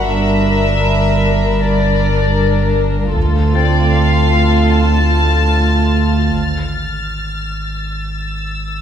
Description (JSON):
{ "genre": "cinematic, suspense film score", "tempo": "free time", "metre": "none", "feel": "none", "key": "unclear", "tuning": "A4 = 439 Hz", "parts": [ { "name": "rich studio violin section", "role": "melody", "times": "0.0-6.3 s", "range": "D5 to A5", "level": "-19 LUFS", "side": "left 2 dB", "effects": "none" }, { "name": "warm chamber violin section", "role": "second line", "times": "0.0-6.3 s", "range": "D4 to Bb4", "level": "-19 LUFS", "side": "left 2 dB", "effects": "none" }, { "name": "dark studio cello section", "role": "bass", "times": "0.0-6.3 s", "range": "D2 to G2", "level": "-20 LUFS", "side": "right 3 dB", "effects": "none" }, { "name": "rich studio double bass section", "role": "bass", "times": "0.0-6.3 s", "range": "G1 to D2", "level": "-19 LUFS", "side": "right 3 dB", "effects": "none" }, { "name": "warm sub bass", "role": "drone", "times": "0.0-8.8 s", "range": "G1 to D2", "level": "-17 LUFS", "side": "equal", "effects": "none" }, { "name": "bright baby grand piano", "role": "texture", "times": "0.0-6.3 s", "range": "C4 to F#5", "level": "-29 LUFS", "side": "equal", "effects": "none" }, { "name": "warm studio violin section", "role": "texture", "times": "0.0-8.8 s", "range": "Bb5 to A6", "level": "-26 LUFS", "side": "left 2 dB", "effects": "none" }, { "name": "solo taiko drums", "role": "drums", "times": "3.2-4.7 s", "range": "none", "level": "-22 LUFS", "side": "equal", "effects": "none" } ], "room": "wet scoring stage reverb, RT60 1.8 s", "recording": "heard from further back in the room", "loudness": "-12 LUFS", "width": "side -9 dB against mid", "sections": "0.0-8.8 A section", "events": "break 6.3-8.8", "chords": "0.0 Gm; 3.2 Dm; 6.3 F(#9)/G#", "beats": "free time" }